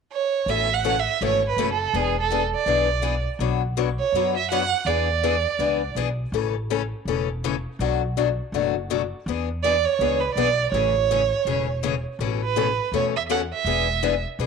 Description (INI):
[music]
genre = acoustic string swing (jazz manouche)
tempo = 164 BPM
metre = 4/4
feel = swing 60% on 8ths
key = A major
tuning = A4 = 440 Hz
[part]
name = rich violin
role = melody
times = 0.1-6.0, 9.6-14.2 s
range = G#4 to F#5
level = -22 LUFS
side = right 9 dB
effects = slapback echo
[part]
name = picked steel-string acoustic guitar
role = accompaniment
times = 0.5-14.5 s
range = B2 to C#5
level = -25 LUFS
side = left 13 dB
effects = none
[part]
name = upright bass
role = bass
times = 0.5-14.5 s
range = E1 to F#2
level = -28 LUFS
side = equal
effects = none
[sound]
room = moderate spring reverb, RT60 1.2 s, small room ambience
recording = 1960s-style stereo with parts hard left and right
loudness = -21 LUFS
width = side -5 dB against mid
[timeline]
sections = 0.5-12.2 A section; 12.2-14.5 A section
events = none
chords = 0.5 Aadd9; 1.9 E7; 3.4 Bmadd9; 4.9 E7; 6.3 A; 7.8 Bm7; 9.3 E7; 10.7 Amaj7; 12.2 Aadd9; 13.7 E7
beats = 0.10 | 0.47 0.83 1.20 1.57 | 1.94 2.30 2.67 3.04 | 3.40 3.77 4.13 4.50 | 4.87 5.23 5.60 5.97 | 6.33 6.70 7.07 7.43 | 7.80 8.16 8.53 8.90 | 9.26 9.63 9.99 10.36 | 10.73 11.09 11.46 11.83 | 12.19 12.56 12.92 13.29 | 13.66 14.02 14.39